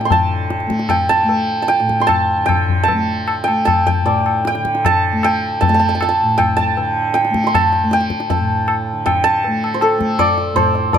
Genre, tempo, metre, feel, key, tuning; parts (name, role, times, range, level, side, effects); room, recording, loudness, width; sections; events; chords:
indian classical, Hindustani; 155 BPM; 7/4; straight; A4 = 440 Hz
santur; melody; 0.0-11.0 s; A4 to C6; -16 LUFS; right 1 dB
tanpura; drone; 0.0-11.0 s; A2 to A3; -22 LUFS; right 1 dB
tabla; percussion; 0.0-11.0 s; -20 LUFS; left 4 dB
light reverb; close, detailed microphones; -14 LUFS; side -8 dB against mid
0.1-10.9 A section
speeding up 0.0-11.0